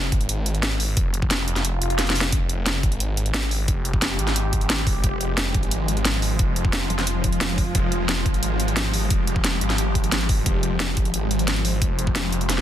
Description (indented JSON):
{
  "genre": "dark technical drum and bass",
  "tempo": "177 BPM",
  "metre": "4/4",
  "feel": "straight",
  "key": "F minor",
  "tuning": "A4 = 440 Hz",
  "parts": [
    { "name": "snarling distorted saw bass", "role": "bass", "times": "0.0-12.6 s", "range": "F1 to Ab1", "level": "-24 LUFS", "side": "equal", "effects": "distortion, overdrive, sidechain pumping" },
    { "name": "drum and bass drum kit", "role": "drums", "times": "0.1-12.6 s", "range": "hi-hat, snare drum", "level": "-24 LUFS", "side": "equal", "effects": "overdrive" },
    { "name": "electronic kick drum", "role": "drums", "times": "0.1-12.1 s", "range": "none", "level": "-23 LUFS", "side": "equal", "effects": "overdrive" },
    { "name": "swell", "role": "sound effects", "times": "1.7-2.3 s", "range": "none", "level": "-30 LUFS", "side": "equal", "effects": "none" },
    { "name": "swarming drone", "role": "sustained chords", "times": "3.2-12.6 s", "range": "F3 to C5", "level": "-27 LUFS", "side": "equal", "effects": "built-in reverb, sidechain pumping" },
    { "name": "metallic wobble bass", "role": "bass", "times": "6.9-7.7 s", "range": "F1", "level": "-26 LUFS", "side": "equal", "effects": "chorus, tube saturation" }
  ],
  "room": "little or no reverb",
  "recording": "dense, heavily limited modern master",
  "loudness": "-20 LUFS",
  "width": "side -11 dB against mid",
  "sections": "0.0-12.6 A section",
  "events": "kick drops out 1.6-2.3; swell 1.7-2.3; drum fill 2.0-2.3",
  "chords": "0.0 Fmadd9"
}